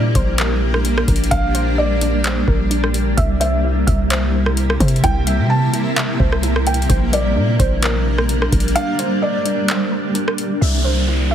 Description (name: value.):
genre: hip hop, atmospheric cloud-rap.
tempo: 129 BPM.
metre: 4/4.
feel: half-time.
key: Bb lydian.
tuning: A4 = 440 Hz.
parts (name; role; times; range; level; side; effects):
felt-muted upright piano; melody; 0.0-10.6 s; D5 to A5; -23 LUFS; equal; ping-pong delay.
granular cloud pad; sustained chords; 0.0-11.3 s; C3 to E4; -20 LUFS; equal; built-in reverb, sidechain pumping.
warbly dusty pluck; arpeggios; 0.0-11.3 s; D4 to E5; -28 LUFS; right 2 dB; chorus, ping-pong delay.
warm 808-style bass; bass; 0.0-11.3 s; Bb1 to C3; -18 LUFS; equal; none.
booming analog drum machine; drums; 0.2-10.5 s; handclaps, hi-hat, kick drum, rim click; -20 LUFS; equal; none.
downlifter; sound effects; 10.6-11.3 s; none; -22 LUFS; equal; none.
room: light reverb.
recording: heavily compressed radio sound, multiband compression.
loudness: -15 LUFS.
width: side -9 dB against mid.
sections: 0.0-10.6 A section.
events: break 8.8-10.6.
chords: 0.0 Bb69; 3.2 C7; 6.9 Bb69; 10.6 C7.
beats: 0.39 0.85 | 1.31 1.78 2.25 2.71 | 3.17 3.64 4.11 4.57 | 5.04 5.50 5.97 6.43 | 6.90 7.36 7.83 8.29 | 8.76 9.22 9.69 10.15 | 10.62 11.08.